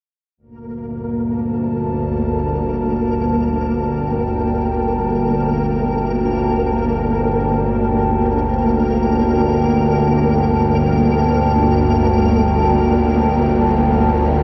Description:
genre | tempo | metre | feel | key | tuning
dark ambient drone | free time | none | none | G minor | A4 = 440 Hz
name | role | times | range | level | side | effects
dark analog pad | sustained chords | 0.4-14.4 s | Bb3 to A5 | -22 LUFS | equal | chorus
bowed-like drone | drone | 0.7-14.4 s | G1 to D2 | -20 LUFS | equal | built-in reverb
flickering grainy texture | texture | 0.7-14.4 s | Bb3 to Bb4 | -24 LUFS | equal | built-in reverb
room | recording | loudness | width
wet huge ambient reverb, RT60 8.7 s | none | -17 LUFS | mono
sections
0.4-14.4 A section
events
none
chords
0.4 Gmadd9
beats
free time

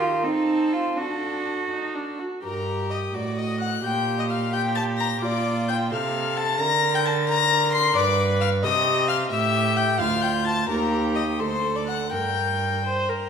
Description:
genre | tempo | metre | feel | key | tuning
quick classical-period movement for string quartet | 81-89 BPM (dotted quarters) | 6/8 | rubato | G minor | A4 = 439 Hz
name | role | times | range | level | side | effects
warm violin | melody | 0.0-13.3 s | G5 to C7 | -27 LUFS | left 9 dB | none
warm violin | second line | 0.0-13.3 s | A4 to C6 | -28 LUFS | left 3 dB | none
warm viola | accompaniment | 0.0-13.3 s | Eb3 to C5 | -28 LUFS | right 1 dB | none
rich cello | bass | 0.0-13.3 s | D2 to F#4 | -26 LUFS | right 3 dB | none
room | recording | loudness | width
wet recital hall reverb, RT60 1.5 s | recorded in a church or concert hall | -21 LUFS | side -7 dB against mid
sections
0.0-2.4 A section; 2.4-13.3 B section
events
none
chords
0.2 Adim/C; 1.0 D; 2.4 Gm; 3.1 D#dim/A; 3.8 Gm/Bb; 5.2 Bb; 5.9 F/C; 6.6 Bb/D; 8.0 G; 8.6 Cm; 9.3 A5; 10.0 Dm; 10.7 Eb; 11.4 D5; 12.1 Gm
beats
0.24 | 0.97 1.71 | 2.44 3.14 | 3.84 4.53 | 5.22 5.91 | 6.60 7.29 | 7.96 8.64 | 9.32 10.00 | 10.69 11.40 | 12.12 12.84

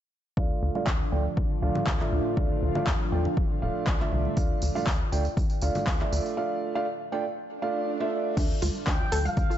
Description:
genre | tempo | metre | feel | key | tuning
progressive house | 120 BPM | 4/4 | straight | D minor | A4 = 440 Hz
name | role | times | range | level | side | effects
airy breathy pad | sustained chords | 0.7-9.6 s | A2 to F4 | -34 LUFS | equal | chorus, phaser, sidechain pumping
felt-muted upright piano | stabs | 0.4-8.3 s | A3 to G5 | -30 LUFS | right 3 dB | vintage 12-bit sampler grit, sidechain pumping, low-pass filter, digital delay
tight sequencer bass | bass | 0.4-9.5 s | D1 to E2 | -29 LUFS | left 1 dB | sidechain pumping
electronic kick drum | drums | 0.4-9.5 s | none | -27 LUFS | equal | none
congas | percussion | 0.8-9.3 s | none | -36 LUFS | equal | overdrive, sidechain pumping on perc
house drum kit | drums | 0.9-9.2 s | crash cymbal, handclaps, hi-hat | -34 LUFS | left 1 dB | overdrive, sidechain pumping on cymbals, sidechain pumping on hats
tambourine | percussion | 4.4-9.6 s | none | -42 LUFS | right 1 dB | none
swell | sound effects | 7.5-8.4 s | none | -37 LUFS | left 2 dB | none
wide unison pluck | arpeggios | 8.4-9.6 s | D4 to F5 | -33 LUFS | equal | sidechain pumping, digital delay
expressive synth lead | melody | 8.9-9.6 s | F5 to G5 | -32 LUFS | equal | lush chorus, cassette tape, digital delay
room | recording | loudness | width
light reverb | nothing above 7.9 kHz | -25 LUFS | side -11 dB against mid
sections
0.4-8.4 A section; 8.4-9.6 B section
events
filter sweep on felt piano 0.4-8.4; filter sweep on analog synth pad 0.4-8.4; break 6.4-8.4; swell 7.5-8.4; filter sweep on synth pluck 8.4-9.6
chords
0.4 Dm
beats
| 0.37 0.87 1.37 1.87 | 2.37 2.87 3.37 3.87 | 4.37 4.87 5.37 5.87 | 6.37 6.87 7.37 7.87 | 8.37 8.87 9.37

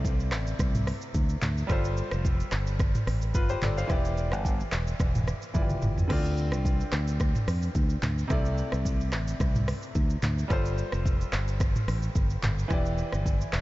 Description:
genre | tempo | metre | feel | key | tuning
afrobeats | 109 BPM | 4/4 | swing 55% on 16ths | unclear | A4 = 440 Hz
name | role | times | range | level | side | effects
bright grand piano | accompaniment | 0.0-13.6 s | C3 to F5 | -34 LUFS | left 1 dB | none
fingered electric bass | bass | 0.0-13.6 s | E1 to F2 | -28 LUFS | equal | none
afro-pop drum kit | drums | 0.0-13.6 s | crash cymbal, handclaps, hi-hat, kick drum, rim click, shaker, toms | -28 LUFS | equal | none
room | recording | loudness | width
light reverb, digital ambience | nothing above 7.7 kHz | -25 LUFS | side -17 dB against mid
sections
0.0-13.6 A section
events
drum fill 5.5-6.1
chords
0.0 C69; 1.7 G9sus4; 3.9 Em7; 6.1 Dm7; 8.3 C69; 10.5 G9sus4; 12.7 Em7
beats
0.04 0.59 1.15 | 1.70 2.25 2.80 3.35 | 3.90 4.45 5.00 5.55 | 6.10 6.65 7.20 7.75 | 8.30 8.85 9.40 9.95 | 10.50 11.05 11.60 12.15 | 12.71 13.26

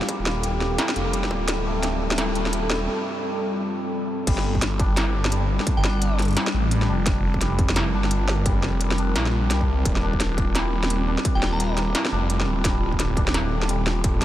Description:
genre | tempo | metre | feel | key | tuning
half-time drum and bass | 172 BPM | 4/4 | swing 60% on 16ths, half-time | G minor | A4 = 441 Hz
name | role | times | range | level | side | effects
dark analog pad | sustained chords | 0.0-14.2 s | G3 to Bb4 | -28 LUFS | left 1 dB | chorus, sidechain pumping
santur | arpeggios | 0.0-14.2 s | G3 to G4 | -30 LUFS | left 1 dB | tape echo
industrial drum kit | drums | 0.0-14.2 s | crash cymbal, hi-hat, snare drum | -27 LUFS | equal | small room ambience
electronic kick drum | drums | 0.1-1.6, 4.3-14.1 s | none | -24 LUFS | equal | distortion, high-pass filter on kick, small room ambience
phased detuned saw bass | bass | 0.2-14.2 s | D1 to C2 | -24 LUFS | equal | phaser
glassy synth bell | melody | 5.8-6.1, 11.4-11.8 s | G5 to Bb5 | -35 LUFS | right 1 dB | none
room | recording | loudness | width
moderate huge ambient reverb, RT60 8.1 s | dreamy mix soaked in reverb | -20 LUFS | side -13 dB against mid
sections
0.0-4.3 A section; 4.3-14.2 B section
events
build-up 0.0-4.3; break 2.9-4.3; drop 4.3-14.2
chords
0.0 Eb; 4.3 Gsus2; 7.1 Fsus4; 9.9 Eb; 12.6 Dm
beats
| 0.09 0.44 0.79 1.13 | 1.48 1.83 2.18 2.53 | 2.88 3.23 3.58 3.92 | 4.27 4.62 4.97 5.32 | 5.67 6.02 6.37 6.71 | 7.06 7.41 7.76 8.11 | 8.46 8.81 9.16 9.51 | 9.85 10.20 10.55 10.90 | 11.25 11.60 11.95 12.30 | 12.64 12.99 13.34 13.69 | 14.04

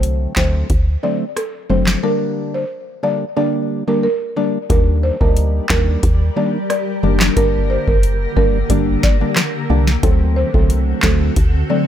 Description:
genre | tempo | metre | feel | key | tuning
dancehall | 90 BPM | 4/4 | straight | G harmonic minor | A4 = 441 Hz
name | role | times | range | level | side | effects
percussive organ stab | accompaniment | 0.0-11.9 s | D3 to Eb4 | -20 LUFS | left 1 dB | chorus, phaser
woody FM bass | bass | 0.0-11.6 s | F#1 to Eb2 | -17 LUFS | equal | none
booming analog drum machine | drums | 0.0-11.6 s | handclaps, hi-hat, kick drum, rim click, snare drum | -16 LUFS | equal | none
buzzing marimba with medium mallets | melody | 0.4-11.9 s | A4 to D5 | -22 LUFS | equal | ping-pong delay
granular cloud pad | sustained chords | 5.4-11.9 s | D3 to D5 | -24 LUFS | equal | built-in reverb, sidechain pumping
room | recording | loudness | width
little or no reverb | none | -14 LUFS | side -10 dB against mid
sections
0.0-4.7 A section; 4.7-11.9 B section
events
none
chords
0.0 D7; 2.0 Gm; 4.7 Ebmaj7; 7.4 Gm; 10.0 D7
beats
0.03 0.70 1.37 | 2.03 2.70 3.37 4.03 | 4.70 5.37 6.03 6.70 | 7.37 8.03 8.70 9.37 | 10.03 10.70 11.37

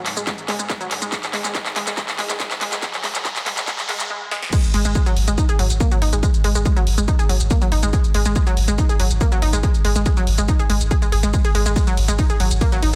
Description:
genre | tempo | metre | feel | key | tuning
driving peak-time techno | 141 BPM | 4/4 | straight | unclear | A4 = 439 Hz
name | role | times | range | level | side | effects
deep dark ambient pad | drone | 0.0-4.1 s | G#2 | -44 LUFS | equal | none
riser | sound effects | 0.2-4.1 s | none | -37 LUFS | equal | none
punchy analog drum machine | drums | 0.1-12.9 s | crash cymbal, handclaps, hi-hat, ride cymbal, shaker, snare drum | -28 LUFS | equal | sidechain pumping on hats, sidechain pumping on perc, sidechain pumping on cymbals
analog pluck | riff | 0.2-12.9 s | F#3 to G#4 | -27 LUFS | equal | chorus, sidechain pumping, delay
electronic kick drum | drums | 0.3-12.7 s | none | -21 LUFS | equal | overdrive
warm sub bass | bass | 4.6-12.9 s | G#1 | -23 LUFS | equal | overdrive, sidechain pumping, low-pass filter
room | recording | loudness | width
little or no reverb | dense, heavily limited modern master, high-pass filter | -19 LUFS | mono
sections
0.0-4.5 A section; 4.5-13.0 B section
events
build-up 0.0-4.5; drum fill 0.0-4.1, 4.3; filter sweep on synth arpeggio sound 0.0-4.5; drop 4.5-13.0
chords
0.0 G#5; 4.5 N.C.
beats
0.27 0.70 | 1.12 1.55 1.98 2.40 | 2.83 3.25 3.68 4.10 | 4.53 4.95 5.38 5.80 | 6.23 6.66 7.08 7.51 | 7.93 8.36 8.78 9.21 | 9.63 10.06 10.48 10.91 | 11.34 11.76 12.19 12.61

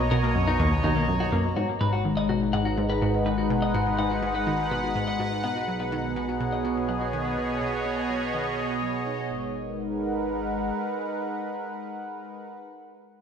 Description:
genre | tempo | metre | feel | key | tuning
ambient, sequencer-driven space music | 124 BPM | 4/4 | straight | G# minor | A4 = 439 Hz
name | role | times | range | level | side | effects
sweeping resonant pad | sustained chords | 0.0-12.7 s | B2 to A#5 | -27 LUFS | equal | chorus
analog pluck | riff | 0.0-9.5 s | D#2 to D#4 | -29 LUFS | equal | chorus, ping-pong delay
warm sub bass | bass | 0.0-10.7 s | G#1 to B1 | -36 LUFS | equal | none
semi-hollow electric guitar | arpeggios | 0.1-9.5 s | A#3 to G#5 | -33 LUFS | left 2 dB | auto-pan, ping-pong delay
room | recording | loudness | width
wet plate reverb, RT60 2.5 s | none | -24 LUFS | side -7 dB against mid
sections
0.0-1.6 A section; 1.6-9.3 B section; 9.3-13.2 C section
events
fade-out on synth arpeggio sound 1.6-9.3; fade-out on clean electric guitar 1.6-9.3; fade-out on sub bass 1.6-9.3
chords
0.0 Bmaj7; 1.6 G#m7; 5.4 B6; 9.3 G#m7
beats
0.11 0.60 1.08 | 1.56 2.05 2.53 3.02 | 3.50 3.98 4.47 4.95 | 5.43 5.92 6.40 6.89 | 7.37 7.86 8.34 8.82 | 9.31 9.79 10.27 10.76 | 11.24 11.73 12.21

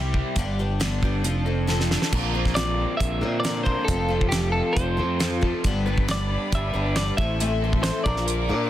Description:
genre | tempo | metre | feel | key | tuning
folk rock and heartland rock | 136 BPM | 4/4 | straight | unclear | A4 = 440 Hz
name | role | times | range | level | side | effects
picked twelve-string acoustic guitar | accompaniment | 0.0-8.7 s | G2 to B4 | -29 LUFS | left 4 dB | none
crunchy overdriven guitar | riff | 0.0-8.7 s | F2 to Bb4 | -30 LUFS | right 1 dB | none
modern bright fingered electric bass | bass | 0.0-8.7 s | F1 to Bb2 | -26 LUFS | equal | none
damped 70s drum kit | drums | 0.1-8.4 s | crash cymbal, hi-hat, kick drum, snare drum | -26 LUFS | equal | none
twelve-string electric guitar | melody | 2.6-8.7 s | G4 to E5 | -28 LUFS | equal | digital delay
rich studio string section | sustained chords | 5.6-8.7 s | G4 to D6 | -36 LUFS | left 2 dB | none
room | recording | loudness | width
light reverb, small room reverb | dense, heavily limited modern master | -21 LUFS | side -12 dB against mid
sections
0.0-2.1 A section; 2.1-8.7 B section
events
drum fill 1.7-2.1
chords
0.4 G; 1.2 F6; 2.1 Bbadd9; 3.9 F; 5.6 G; 7.2 Am; 8.1 Bb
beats
| 0.36 0.81 1.25 1.69 | 2.13 2.57 3.01 3.45 | 3.88 4.33 4.76 5.20 | 5.64 6.08 6.52 6.96 | 7.40 7.84 8.28

